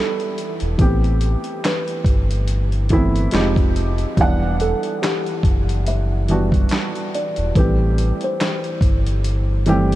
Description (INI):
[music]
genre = lo-fi hip hop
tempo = 71 BPM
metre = 4/4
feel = swing 57% on 16ths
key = unclear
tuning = A4 = 440 Hz
[part]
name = kalimba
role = melody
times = 0.0-10.0 s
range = G4 to E5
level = -27 LUFS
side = equal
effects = ping-pong delay
[part]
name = felt-muted upright piano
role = accompaniment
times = 0.0-10.0 s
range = E3 to F#5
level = -22 LUFS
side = right 1 dB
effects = none
[part]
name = dusty soul sampler-style drum kit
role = drums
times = 0.2-10.0 s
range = handclaps, hi-hat, kick drum, snare drum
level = -21 LUFS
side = equal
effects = none
[part]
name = sub bass with octave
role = bass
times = 0.6-10.0 s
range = E1 to A1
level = -19 LUFS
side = equal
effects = none
[sound]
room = light reverb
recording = cassette tape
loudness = -16 LUFS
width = side -15 dB against mid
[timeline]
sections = 0.0-10.0 A section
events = none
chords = 0.0 Em9; 0.8 Am9; 3.3 Fm9; 4.2 Em9; 7.6 Am7